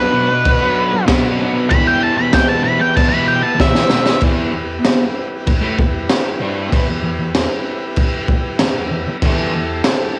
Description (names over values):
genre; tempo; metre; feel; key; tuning
garage rock duo or trio; 96 BPM; 4/4; straight; E minor; A4 = 439 Hz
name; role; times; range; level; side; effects
octave-fuzz lead guitar; melody; 0.0-4.2 s; B4 to B5; -18 LUFS; equal; distortion, cassette tape
combo organ; sustained chords; 0.0-10.2 s; D4 to B4; -28 LUFS; equal; cassette tape
fuzz guitar; riff; 0.0-9.8 s; E2 to B3; -21 LUFS; equal; distortion, cassette tape
crunchy breakbeat drum kit; drums; 0.5-10.0 s; crash cymbal, kick drum, snare drum; -19 LUFS; equal; cassette tape
room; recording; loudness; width
small room ambience; home recording on cassette; -16 LUFS; mono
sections
0.0-4.2 A section; 4.2-10.2 B section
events
drum fill 3.6-4.2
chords
0.0 Bm; 1.7 Em